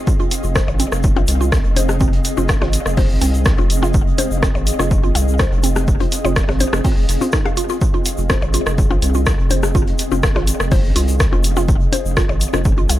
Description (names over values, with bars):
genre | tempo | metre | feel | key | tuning
minimal techno | 124 BPM | 4/4 | straight | F minor | A4 = 441 Hz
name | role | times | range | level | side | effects
granular cloud pad | texture | 0.0-13.0 s | C4 to F5 | -25 LUFS | equal | built-in reverb, sidechain pumping
electronic kick drum | drums | 0.1-12.8 s | none | -17 LUFS | equal | none
vintage drum kit | drums | 0.1-13.0 s | hi-hat, shaker, snare drum | -36 LUFS | equal | high-pass filter on hats, high-pass filter on snare, high-pass filter on perc, high-pass filter on room, tape echo
tube shaker | percussion | 0.1-13.0 s | none | -31 LUFS | left 4 dB | none
mallet-like synth pluck | riff | 0.2-12.8 s | C4 to F5 | -25 LUFS | right 1 dB | chorus, sidechain pumping, tape echo
electronic percussion blips and rim click | percussion | 0.2-13.0 s | none | -26 LUFS | left 5 dB | dub echo
punchy analog drum machine | drums | 0.3-13.0 s | hi-hat, rim click | -22 LUFS | equal | tape echo
saturated sub bass | bass | 0.4-13.0 s | F1 to C2 | -19 LUFS | equal | sidechain pumping
room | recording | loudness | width
small room ambience | echo-heavy mix | -14 LUFS | side -14 dB against mid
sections
0.0-13.0 A section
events
none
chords
0.0 Fm7